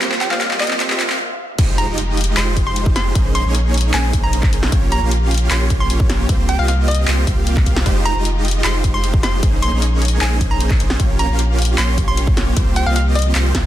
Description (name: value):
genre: future bass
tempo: 153 BPM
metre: 4/4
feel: half-time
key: F minor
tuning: A4 = 440 Hz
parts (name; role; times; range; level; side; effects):
- felt-muted upright piano; accompaniment; 0.0-1.0 s; Bb3 to Eb5; -31 LUFS; right 2 dB; none
- rich studio string section; sustained chords; 0.0-13.7 s; C3 to Bb4; -32 LUFS; left 1 dB; none
- supersaw chords; riff; 0.0-13.7 s; Ab3 to F5; -23 LUFS; right 2 dB; sidechain pumping
- dubstep drum kit; drums; 0.0-13.6 s; crash cymbal, handclaps, hi-hat, snare drum; -22 LUFS; left 1 dB; high-pass filter on snare, high-pass filter on hats, high-pass filter on cymbals, high-pass filter on room
- riser and impact; sound effects; 0.0-3.2 s; none; -27 LUFS; equal; none
- hollow square pluck; melody; 0.2-13.5 s; Eb5 to C6; -24 LUFS; equal; chorus, cassette tape, sidechain pumping, ping-pong delay
- saturated sub bass; bass; 1.6-13.7 s; F1 to C2; -18 LUFS; equal; sidechain pumping
- electronic kick drum; drums; 1.6-13.6 s; none; -17 LUFS; equal; none
room: little or no reverb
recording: dense, heavily limited modern master, high-pass filter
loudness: -14 LUFS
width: side -13 dB against mid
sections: 0.0-1.6 A section; 1.6-13.7 B section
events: build-up 0.0-1.6; drum fill 0.0-1.2; riser 0.0-1.2; stop 1.2-1.6; drop 1.6-13.7; impact 1.6-3.2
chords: 0.0 C7sus4; 1.6 Fm9; 3.2 Bbm11; 4.7 Gm7b5/Bb; 6.3 C7sus4; 7.9 Fm9; 9.4 Bbm11; 11.0 Gm7b5/Bb; 12.6 C7sus4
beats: | 0.02 0.41 0.80 1.19 | 1.58 1.98 2.37 2.76 | 3.15 3.55 3.94 4.33 | 4.72 5.12 5.51 5.90 | 6.29 6.68 7.08 7.47 | 7.86 8.25 8.64 9.04 | 9.43 9.82 10.21 10.61 | 11.00 11.39 11.78 12.17 | 12.57 12.96 13.35